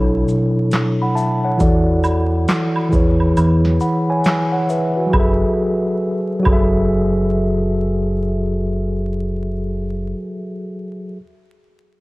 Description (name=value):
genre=lo-fi hip hop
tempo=68 BPM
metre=4/4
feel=swing 62% on 16ths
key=F# minor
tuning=A4 = 440 Hz
part: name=mellow tine electric piano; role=accompaniment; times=0.0-11.2 s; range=B2 to B5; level=-17 LUFS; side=equal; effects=medium stereo tremolo, cassette tape, low-pass filter
part: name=deep dub fingered electric bass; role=bass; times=0.0-10.1 s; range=F#1 to E2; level=-20 LUFS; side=equal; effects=none
part: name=booming analog drum machine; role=drums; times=0.3-6.7 s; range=handclaps, hi-hat, kick drum, shaker, snare drum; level=-20 LUFS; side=equal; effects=vintage 12-bit sampler grit
part: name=maracas and woodblock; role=percussion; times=0.3-6.7 s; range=none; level=-27 LUFS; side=right 2 dB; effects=none
room=light reverb, digital ambience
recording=worn, warbling old tape, cassette tape, vinyl crackle, warbly pitch drift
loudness=-15 LUFS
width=side -21 dB against mid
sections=0.0-5.1 A section; 5.1-8.7 B section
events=kick muted 3.4-5.1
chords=0.0 Bm11; 1.6 E7sus4; 2.9 C#m7/E; 5.1 F#m7